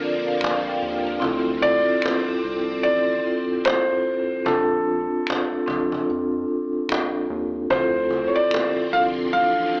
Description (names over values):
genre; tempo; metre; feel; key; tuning
lo-fi hip hop; 74 BPM; 4/4; swing 60% on 16ths; D minor; A4 = 443 Hz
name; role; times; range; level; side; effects
vibraphone with soft mallets; accompaniment; 0.0-9.8 s; C4 to G5; -26 LUFS; equal; cassette tape, low-pass filter
string machine, violins; sustained chords; 0.0-9.8 s; D3 to C4; -35 LUFS; equal; ensemble chorus, low-pass filter
cajon; drums; 0.0-9.8 s; none; -31 LUFS; equal; none
round analog bass; bass; 0.4-9.7 s; A1 to F2; -38 LUFS; equal; none
finger snap; percussion; 0.4-8.7 s; none; -34 LUFS; equal; none
felt-muted upright piano; melody; 1.6-9.8 s; A4 to F5; -24 LUFS; equal; low-pass filter
room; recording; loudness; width
light reverb, studio ambience; AM radio sound; -22 LUFS; mono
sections
0.0-9.8 A section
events
vibraphone fill 0.0-1.2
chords
0.0 Bbmaj7; 1.2 Dm7; 4.5 Bbmaj7; 7.7 Dm7